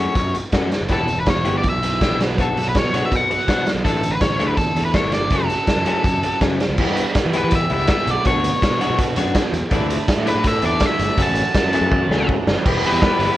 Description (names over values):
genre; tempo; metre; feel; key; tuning
indie rock; 163 BPM; 4/4; straight; E dorian; A4 = 440 Hz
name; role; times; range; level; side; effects
octave-fuzz lead guitar; melody; 0.0-13.4 s; A4 to A5; -22 LUFS; left 1 dB; distortion, slapback echo
electric guitar through a small old amp; riff; 0.0-13.4 s; C#3 to C#5; -25 LUFS; left 5 dB; none
fuzz picked electric bass; bass; 0.0-13.3 s; E1 to E3; -24 LUFS; equal; overdrive
raw garage drum kit; drums; 0.2-13.3 s; crash cymbal, hi-hat, kick drum, snare drum, toms; -20 LUFS; equal; none
overdriven electric guitar; riff; 0.9-13.4 s; E2 to G4; -26 LUFS; right 7 dB; analog chorus, slapback echo
combo organ; sustained chords; 9.7-13.4 s; E4 to B5; -33 LUFS; left 1 dB; none
room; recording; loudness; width
light reverb; worn, warbling old tape, cassette tape, warbly pitch drift; -16 LUFS; side -14 dB against mid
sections
0.0-6.8 A section; 6.8-12.7 B section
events
drum fill 11.9-12.7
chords
0.0 F#m; 0.9 Em; 2.2 Bmadd9; 3.8 Asus4; 5.3 F#m; 6.8 Em; 8.1 Bmadd9; 9.7 Asus4; 11.2 F#m; 12.7 Em